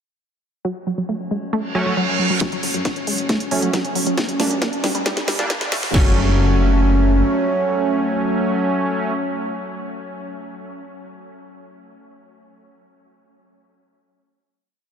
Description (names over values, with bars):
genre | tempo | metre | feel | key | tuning
driving peak-time techno | 136 BPM | 4/4 | straight | F# minor | A4 = 441 Hz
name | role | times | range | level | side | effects
wide unison pluck | riff | 0.6-6.1 s | F#3 to Bb3 | -25 LUFS | equal | sidechain pumping, ping-pong delay
metallic inharmonic drone | drone | 1.3-9.1 s | F#3 to C#4 | -25 LUFS | equal | chorus, built-in reverb, sidechain pumping
reverse cymbal and riser | sound effects | 1.7-5.9 s | none | -29 LUFS | right 3 dB | none
sync-sweep polysynth | stabs | 1.7-9.1 s | F#3 to D4 | -24 LUFS | right 2 dB | chorus, cassette tape, sidechain pumping, analog delay
techno drum kit | drums | 2.4-6.0 s | crash cymbal, kick drum, snare drum | -21 LUFS | equal | high-pass filter on kick, high-pass filter on snare, high-pass filter on cymbals, high-pass filter on room
techno drum kit | drums | 2.4-5.9 s | hi-hat, snare drum | -25 LUFS | equal | none
dark detuned saw bass | bass | 2.6-7.2 s | E1 to G2 | -20 LUFS | left 1 dB | sidechain pumping, high-pass filter
room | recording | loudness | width
wet huge ambient reverb, RT60 7.4 s | dreamy mix soaked in reverb, high-pass filter | -17 LUFS | side -8 dB against mid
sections
0.6-2.4 intro; 2.4-5.9 build; 5.9-9.5 final chord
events
filter sweep on synth arpeggio sound 0.6-2.4, 2.4-5.9; reverse cymbal 1.7-2.4; build-up 2.4-5.9; drum fill 2.4-5.9; riser 2.4-5.9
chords
0.6 F#m; 4.2 Gm; 5.9 F#m